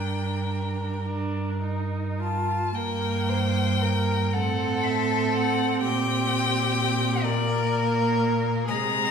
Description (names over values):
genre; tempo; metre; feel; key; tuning
classical, slow romantic movement for string quartet; 34-42 BPM (dotted quarters); 6/8; rubato; G minor; A4 = 440 Hz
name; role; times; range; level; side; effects
clear violin; melody; 0.0-9.1 s; D5 to Bb5; -28 LUFS; left 6 dB; none
rich violin; second line; 0.0-9.1 s; G4 to C5; -29 LUFS; equal; none
clear viola; accompaniment; 0.0-9.1 s; Ab3 to F4; -30 LUFS; right 3 dB; none
clear cello; bass; 0.0-9.1 s; G2 to C3; -27 LUFS; right 1 dB; none
room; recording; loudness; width
wet recital hall reverb, RT60 1.5 s; heard from further back in the room; -22 LUFS; side -6 dB against mid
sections
0.0-2.8 A section; 2.8-9.1 B section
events
none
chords
0.0 Gm; 4.3 Am6; 5.8 Gm/Bb